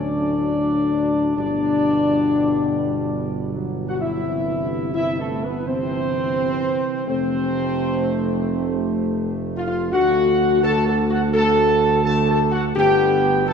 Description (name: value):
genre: classical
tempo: 84 BPM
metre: 4/4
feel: straight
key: D major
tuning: A4 = 440 Hz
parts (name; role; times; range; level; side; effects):
- dark trumpet section; melody; 0.0-13.5 s; A4 to A5; -26 LUFS; right 3 dB; none
- warm French horn section; sustained chords; 0.0-13.5 s; A3 to A4; -20 LUFS; left 3 dB; none
- warm trombone section; sustained chords; 0.0-13.5 s; A2 to B3; -27 LUFS; right 2 dB; none
- mellow tuba; bass; 0.0-13.5 s; F1 to D2; -25 LUFS; right 4 dB; none
room: wet cathedral reverb, RT60 4.6 s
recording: minimal, uncompressed stereo recording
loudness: -18 LUFS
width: side -6 dB against mid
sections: 0.0-13.5 A section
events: none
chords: 0.0 D; 1.4 G; 4.2 C/G; 7.1 F; 9.9 D; 12.8 G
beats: 0.65 | 1.37 2.09 2.81 3.52 | 4.24 4.95 5.66 6.37 | 7.09 7.80 8.51 9.22 | 9.93 10.64 11.34 12.05 | 12.76 13.47